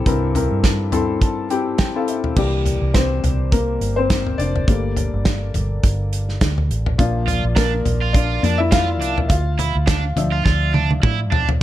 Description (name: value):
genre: piano-driven pop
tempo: 104 BPM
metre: 4/4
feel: swing 56% on 16ths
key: unclear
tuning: A4 = 439 Hz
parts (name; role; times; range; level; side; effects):
- felt-muted upright piano; accompaniment; 0.0-11.6 s; G2 to C6; -22 LUFS; left 4 dB; none
- vintage muted fingered electric bass; bass; 0.0-11.6 s; F1 to A2; -21 LUFS; right 1 dB; none
- natural country drum kit; drums; 0.1-11.6 s; crash cymbal, hi-hat, kick drum, snare drum, toms; -19 LUFS; equal; none
- cranked stack guitar; riff; 7.3-11.5 s; D4 to F4; -24 LUFS; right 8 dB; overdrive
room: light reverb, small room ambience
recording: dark, warm production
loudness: -16 LUFS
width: side -13 dB against mid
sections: 0.0-2.4 A section; 2.4-11.6 B section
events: felt piano fill 0.6-2.4; felt piano solo 2.4-11.6; drum fill 10.5-11.6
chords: 0.0 C; 2.4 C7; 4.7 Gmadd9; 7.0 Bb; 9.3 Dmadd9